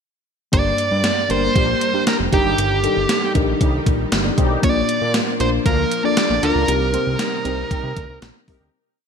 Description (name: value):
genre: 1980s-style pop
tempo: 117 BPM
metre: 4/4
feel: straight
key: unclear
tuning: A4 = 440 Hz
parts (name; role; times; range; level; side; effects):
- dark smooth lead guitar; melody; 0.5-8.2 s; G4 to D5; -21 LUFS; right 3 dB; overdrive, digital delay
- mellow FM electric piano; accompaniment; 0.5-8.8 s; G2 to G5; -23 LUFS; left 3 dB; chorus, phaser
- string machine, full ensemble; sustained chords; 0.5-8.7 s; C3 to Eb4; -27 LUFS; left 1 dB; ensemble chorus
- fat analog bass; bass; 0.5-8.7 s; F1 to C3; -23 LUFS; equal; none
- gated 80s digital drum machine; drums; 0.5-8.6 s; hi-hat, kick drum, snare drum; -21 LUFS; equal; gated reverb, gated reverb snare
- mellow synth brass; stabs; 1.6-8.7 s; G3 to Bb4; -28 LUFS; left 2 dB; chorus, phaser
room: moderate lush hall reverb, RT60 2.2 s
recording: bright 1980s-style digital production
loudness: -16 LUFS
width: side -6 dB against mid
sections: 0.5-8.7 pre-chorus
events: FM electric piano fill 3.9-4.6; fade-out 6.7-8.7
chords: 0.5 Gm; 2.3 Ebmaj7/G; 4.6 Bb; 6.7 Cm7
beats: | 0.53 1.04 1.56 2.07 | 2.58 3.10 3.61 4.12 | 4.63 5.15 5.66 6.17 | 6.68 7.20 7.71 8.22